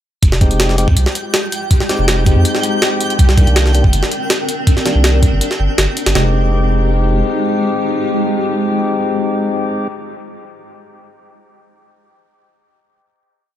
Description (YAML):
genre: drum and bass, jungle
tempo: 162 BPM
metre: 4/4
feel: straight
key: F dorian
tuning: A4 = 436 Hz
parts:
  - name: granular cloud pad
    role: sustained chords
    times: 1.0-9.9 s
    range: Ab3 to Bb4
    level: -22 LUFS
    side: equal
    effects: built-in reverb
  - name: saturated sub bass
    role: bass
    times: 0.2-7.2 s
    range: F1 to F2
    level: -14 LUFS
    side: equal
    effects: none
  - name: jungle sampler-style drum kit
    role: drums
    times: 0.2-6.2 s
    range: hi-hat, kick drum, snare drum, toms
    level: -14 LUFS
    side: equal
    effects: small room ambience
  - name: twinkling granular texture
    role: texture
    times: 0.4-6.2 s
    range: G5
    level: -26 LUFS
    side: right 3 dB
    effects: built-in reverb
  - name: tonewheel organ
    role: stabs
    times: 0.4-9.9 s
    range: Eb3 to G4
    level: -19 LUFS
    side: left 3 dB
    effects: overdrive, slow rotary speaker, dub echo
room: light reverb, digital ambience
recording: none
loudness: -12 LUFS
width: side -11 dB against mid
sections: 0.2-6.2 drop; 6.2-9.1 final chord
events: drop 0.2-6.2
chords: 0.2 Fm9; 3.2 Cm9; 6.2 Fm9